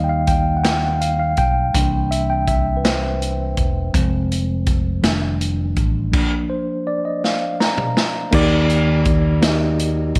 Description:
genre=slow gospel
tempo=55 BPM (dotted quarters)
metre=6/8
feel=straight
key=Eb major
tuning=A4 = 439 Hz
part: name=mellow tine electric piano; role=accompaniment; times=0.0-10.2 s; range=Eb3 to Bb5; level=-23 LUFS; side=equal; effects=none
part: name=fingered electric bass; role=bass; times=0.0-10.2 s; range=E1 to Eb2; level=-23 LUFS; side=equal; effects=none
part: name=swinging big-band drum kit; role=drums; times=0.3-10.2 s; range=crash cymbal, hi-hat, kick drum, snare drum, toms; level=-23 LUFS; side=equal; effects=none
room=small room ambience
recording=none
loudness=-19 LUFS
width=mono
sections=0.0-8.3 A section; 8.3-10.2 B section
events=tine electric piano solo 0.0-8.3; drum fill 7.2-8.3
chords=0.0 Eb; 1.7 C7; 3.9 Fm; 5.0 F13; 6.1 Bb; 8.3 Ebmaj7

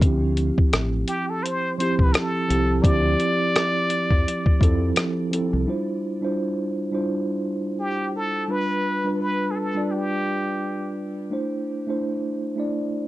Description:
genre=lo-fi hip hop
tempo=85 BPM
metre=4/4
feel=swing 60% on 16ths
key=D dorian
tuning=A4 = 440 Hz
part: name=mellow tine electric piano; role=accompaniment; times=0.0-13.1 s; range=E3 to D5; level=-24 LUFS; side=right 1 dB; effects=fast stereo tremolo, low-pass filter, plate reverb
part: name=deep dub fingered electric bass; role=bass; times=0.0-5.7 s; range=A1 to F2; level=-24 LUFS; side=equal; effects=none
part: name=lo-fi sampler-style drum kit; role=drums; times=0.0-5.5 s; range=hi-hat, kick drum, rim click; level=-20 LUFS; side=equal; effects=none
part: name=trumpet with plunger mute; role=melody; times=1.1-11.0 s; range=G4 to D5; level=-26 LUFS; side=left 1 dB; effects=low-pass filter, plate reverb
room=moderate small room reverb, RT60 0.5 s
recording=cassette tape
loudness=-21 LUFS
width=side -16 dB against mid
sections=0.0-5.7 A section; 5.7-13.1 B section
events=none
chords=0.0 Dm11; 8.5 G7; 11.3 C69

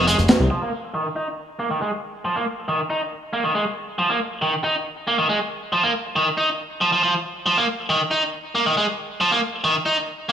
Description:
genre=breakbeat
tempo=138 BPM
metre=4/4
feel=straight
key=F minor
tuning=A4 = 442 Hz
part: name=biting overdriven guitar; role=riff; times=0.0-10.3 s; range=Eb3 to Eb4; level=-20 LUFS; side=right 1 dB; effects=vintage 12-bit sampler grit, low-pass filter, tape echo
part: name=fat analog bass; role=bass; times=0.0-0.5 s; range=F1 to C2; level=-20 LUFS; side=equal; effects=tube saturation
room=moderate plate reverb, RT60 1.4 s, studio reverb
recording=none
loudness=-19 LUFS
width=side -8 dB against mid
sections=0.5-10.3 A section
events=filter sweep on overdriven electric guitar 0.5-10.3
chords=0.0 Fm; 0.5 F7(no3)

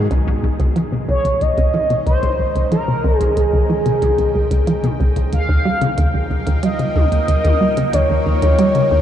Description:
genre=ambient, sequencer-driven space music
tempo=92 BPM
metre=4/4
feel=straight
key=unclear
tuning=A4 = 440 Hz
part: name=evolving wavetable pad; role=sustained chords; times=0.0-9.0 s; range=Eb3 to G5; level=-27 LUFS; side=left 1 dB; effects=phaser, built-in reverb
part: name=resonant blip pluck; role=riff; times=0.0-9.0 s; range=Db2 to G3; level=-16 LUFS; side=equal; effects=chorus, ping-pong delay
part: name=minimal click drum kit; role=percussion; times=0.1-8.9 s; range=hi-hat, toms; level=-34 LUFS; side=equal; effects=none
part: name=expressive synth lead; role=melody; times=1.1-9.0 s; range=Ab4 to F5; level=-18 LUFS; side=equal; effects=analog chorus, cassette tape, ping-pong delay
room=wet huge ambient reverb, RT60 7.7 s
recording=dark, warm production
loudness=-14 LUFS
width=side -10 dB against mid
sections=0.1-9.0 A section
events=fade-in on ambient pad 0.1-9.0; fade-in on drum 0.1-9.0; filter sweep on synth arpeggio sound 0.1-9.0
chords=0.1 Dbsus2; 5.3 Ebadd9

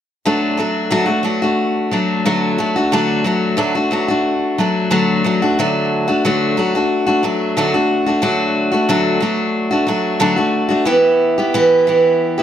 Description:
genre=rock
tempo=90 BPM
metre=4/4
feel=straight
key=unclear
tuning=A4 = 440 Hz
part: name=picked steel-string acoustic guitar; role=solo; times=0.3-12.4 s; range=D3 to G4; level=-14 LUFS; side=equal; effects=tape echo
room=light reverb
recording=none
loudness=-14 LUFS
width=side -10 dB against mid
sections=0.3-5.6 A section; 5.6-12.4 B section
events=none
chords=0.3 D; 10.9 Em

